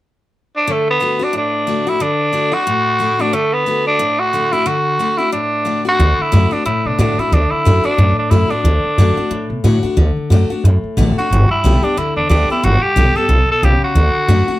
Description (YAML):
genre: rockabilly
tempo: 181 BPM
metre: 4/4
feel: swing 59% on 8ths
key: D major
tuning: A4 = 443 Hz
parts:
  - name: raspy tenor saxophone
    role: melody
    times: 0.6-14.6 s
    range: A3 to A4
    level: -16 LUFS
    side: right 1 dB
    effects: slapback echo
  - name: picked steel-string acoustic guitar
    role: accompaniment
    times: 0.7-14.6 s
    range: G2 to G4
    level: -20 LUFS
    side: left 3 dB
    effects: none
  - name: upright bass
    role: bass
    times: 6.0-14.5 s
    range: G1 to B2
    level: -13 LUFS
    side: equal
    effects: none
room: light reverb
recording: none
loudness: -13 LUFS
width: side -16 dB against mid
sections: 0.7-6.0 A section; 6.0-14.6 B section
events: none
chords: 0.0 N.C.; 0.7 D; 11.3 G; 14.0 D